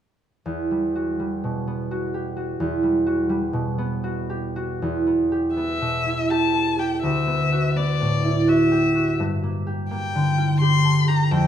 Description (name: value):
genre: classical, impressionist duo for violin and harp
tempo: 83 BPM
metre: 3/4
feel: uneven beats, rubato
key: E minor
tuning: A4 = 440 Hz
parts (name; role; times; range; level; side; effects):
- concert harp; accompaniment; 0.5-11.5 s; D2 to A4; -20 LUFS; right 1 dB; none
- rich violin; melody; 5.6-11.5 s; D5 to C6; -24 LUFS; left 5 dB; none
room: moderate recital hall reverb, RT60 1.8 s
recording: none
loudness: -20 LUFS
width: side -10 dB against mid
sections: 0.5-4.8 A section; 4.8-11.5 B section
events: none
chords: 0.5 Emadd9; 4.8 Em; 7.0 D69; 9.2 Gm7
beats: | 0.45 1.19 1.90 | 2.59 3.29 4.03 | 4.81 5.57 6.30 | 7.03 7.76 8.48 | 9.19 9.91 10.61 | 11.31